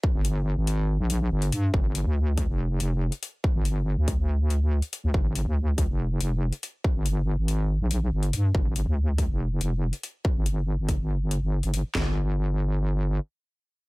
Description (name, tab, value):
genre	heavy wobble dubstep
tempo	141 BPM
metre	4/4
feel	half-time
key	G phrygian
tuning	A4 = 441 Hz
part	dubstep drum kit	drums	0.0-12.0 s	handclaps, kick drum, snare drum, toms	-26 LUFS	equal	overdrive
part	wobble bass	bass	0.1-13.2 s	F1 to G2	-24 LUFS	equal	chorus, overdrive
part	electronic hi-hat	drums	0.2-11.8 s	none	-34 LUFS	left 5 dB	overdrive
room	little or no reverb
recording	none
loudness	-24 LUFS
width	side -23 dB against mid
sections	0.0-11.9 A section; 11.9-13.9 B section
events	filter sweep on wobble bass 0.0-11.9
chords	none